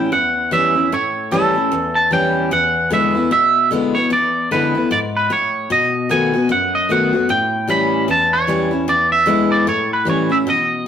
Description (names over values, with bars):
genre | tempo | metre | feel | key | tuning
rock | 151 BPM | 4/4 | swing 59% on 8ths | unclear | A4 = 440 Hz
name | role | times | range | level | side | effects
twangy electric guitar | melody | 0.0-10.9 s | A4 to B5 | -16 LUFS | right 2 dB | none
picked steel-string acoustic guitar | accompaniment | 0.0-10.9 s | E2 to F#4 | -18 LUFS | left 2 dB | none
room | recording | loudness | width
wet stone room reverb, RT60 1.1 s | rough rehearsal-room recording, warm saturation | -14 LUFS | side -9 dB against mid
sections
0.0-10.9 A section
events
none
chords
0.0 A7; 2.5 E7; 5.7 B7; 7.3 A7; 8.9 E7; 9.7 A7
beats
0.12 0.52 | 0.92 1.31 1.72 2.11 | 2.51 2.91 3.31 3.71 | 4.11 4.51 4.91 5.31 | 5.70 6.10 6.50 6.90 | 7.29 7.69 8.09 8.49 | 8.88 9.28 9.68 10.07 | 10.47 10.87